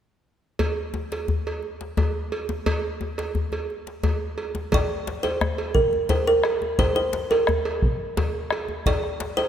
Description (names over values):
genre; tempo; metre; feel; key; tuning
west african traditional, West African drum ensemble; 116 BPM (dotted quarters); 12/8; straight; unclear; A4 = 438 Hz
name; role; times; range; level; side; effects
cowbell; percussion; 0.6-9.5 s; none; -30 LUFS; right 5 dB; none
djembe; percussion; 0.6-9.5 s; none; -27 LUFS; left 3 dB; none
kalimba; melody; 4.7-9.5 s; Bb4 to D5; -23 LUFS; right 1 dB; none
bombo; percussion; 4.7-9.1 s; none; -27 LUFS; equal; none
room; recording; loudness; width
moderate concert hall reverb, RT60 2.5 s; close, detailed microphones; -22 LUFS; side -9 dB against mid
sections
0.6-4.7 A section; 4.7-9.5 B section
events
none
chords
none